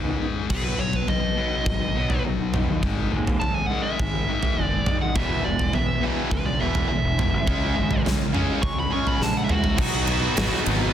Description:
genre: quiet-loud alternative rock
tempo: 103 BPM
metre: 4/4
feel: straight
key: B major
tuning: A4 = 440 Hz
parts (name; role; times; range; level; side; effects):
- electric guitar through a small old amp; arpeggios; 0.0-9.8 s; G#2 to E4; -33 LUFS; right 2 dB; tremolo, slapback echo
- thick fuzz guitar; riff; 0.0-10.9 s; E2 to D#4; -28 LUFS; left 7 dB; distortion
- fuzz fingered electric bass; bass; 0.0-10.9 s; E1 to D#2; -28 LUFS; equal; overdrive
- dark smooth lead guitar; melody; 0.5-10.6 s; F#4 to C#6; -28 LUFS; right 2 dB; overdrive, plate reverb
- huge arena drum kit; drums; 0.5-10.8 s; crash cymbal, kick drum, ride cymbal, snare drum, toms; -25 LUFS; right 1 dB; soft clipping on snare
- tight distorted guitar; riff; 5.2-10.9 s; E2 to D#4; -29 LUFS; right 11 dB; distortion
- scooped high-gain guitar; riff; 9.8-10.9 s; B2 to B3; -31 LUFS; right 1 dB; none
room: moderate studio reverb, RT60 0.6 s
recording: dense, heavily limited modern master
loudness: -21 LUFS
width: side -10 dB against mid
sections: 0.5-9.8 A section; 9.8-10.9 B section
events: lead electric guitar solo 0.5-9.8; drum fill 9.2-9.8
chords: 0.0 G#m; 0.5 B; 2.8 G#; 5.2 E; 7.5 C#m; 9.8 B

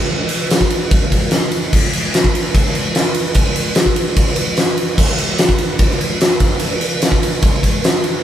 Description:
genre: rock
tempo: 147 BPM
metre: 4/4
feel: straight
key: none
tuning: none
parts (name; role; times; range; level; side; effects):
- big rock drum kit; drums; 0.3-8.1 s; crash cymbal, kick drum, ride cymbal, snare drum; -13 LUFS; equal; none
room: light reverb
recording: band playing live in one room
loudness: -13 LUFS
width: side -11 dB against mid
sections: 0.0-8.2 A section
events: none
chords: none

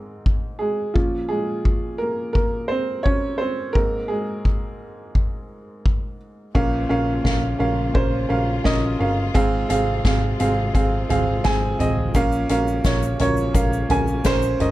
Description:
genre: piano-driven pop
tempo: 86 BPM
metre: 4/4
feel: straight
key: Bb minor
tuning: A4 = 440 Hz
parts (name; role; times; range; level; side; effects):
- warm upright piano; accompaniment; 0.0-14.7 s; Ab2 to Ab5; -22 LUFS; right 1 dB; none
- soft-mallet drum kit; drums; 0.3-14.7 s; crash cymbal, hi-hat, kick drum, snare drum, toms; -22 LUFS; equal; none
- warm symphonic string section; sustained chords; 6.5-14.7 s; C3 to F4; -32 LUFS; left 4 dB; none
- vintage muted picked electric bass; bass; 6.6-14.7 s; G1 to Bb1; -25 LUFS; equal; none
- egg shaker; percussion; 12.1-14.6 s; none; -41 LUFS; left 20 dB; none
room: light reverb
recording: dark, warm production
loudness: -19 LUFS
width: side -16 dB against mid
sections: 0.0-6.6 A section; 6.6-14.7 B section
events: upright piano solo 0.0-6.6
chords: 0.0 Abadd9; 1.0 Bbm; 3.8 Abadd9; 6.6 Bbm; 9.3 Fm/Ab; 12.1 Bbm

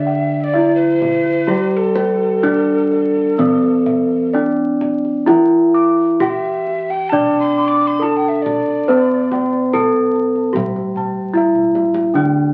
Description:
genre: Javanese gamelan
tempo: 63-77 BPM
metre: 4/4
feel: straight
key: D slendro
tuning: A4 = 440 Hz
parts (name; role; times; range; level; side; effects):
- gamelan-type bronze metallophone; melody; 0.0-12.5 s; C4-45c to D5; -19 LUFS; equal; none
- breathy mellow alto recorder; second line; 0.0-9.6 s; A4+28c to D6; -22 LUFS; equal; none
- gamelan-type bronze metallophone; accompaniment; 0.0-12.5 s; D3 to D4; -22 LUFS; equal; none
- gamelan-type bossed gongs; arpeggios; 0.0-12.5 s; C5-45c to D6; -30 LUFS; equal; none
- gamelan-type bossed gongs; bass; 0.0-12.5 s; D2 to C5-45c; -27 LUFS; equal; none
- gamelan-type bronze metallophone; arpeggios; 0.1-12.5 s; C5-45c to D6; -31 LUFS; equal; none
- kendang; percussion; 0.5-12.1 s; none; -32 LUFS; equal; none
room: wet club reverb, RT60 0.6 s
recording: very old 78 rpm record, vinyl crackle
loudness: -16 LUFS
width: mono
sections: 0.0-12.2 A section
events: drum fill 11.6-12.2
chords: none

